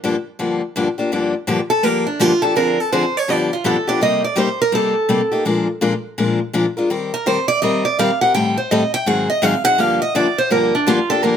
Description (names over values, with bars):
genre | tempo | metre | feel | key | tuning
jazz | 166 BPM | 4/4 | swing 63% on 8ths | G minor | A4 = 439 Hz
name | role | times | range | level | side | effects
picked steel-string acoustic guitar | accompaniment | 0.0-11.4 s | G2 to Bb4 | -18 LUFS | left 3 dB | none
picked steel-string acoustic guitar | melody | 1.7-11.4 s | D4 to G5 | -17 LUFS | right 2 dB | none
room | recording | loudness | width
light reverb | close, detailed microphones | -15 LUFS | side -8 dB against mid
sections
0.0-1.1 A section; 1.1-11.4 B section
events
steel-string acoustic guitar solo 1.1-11.4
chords
0.0 Gm7; 2.6 Dm7b5; 3.3 G7; 4.0 Cm7; 5.5 Bb7; 6.9 Eb6; 8.3 Am7b5; 9.1 Ab7; 9.8 Gm7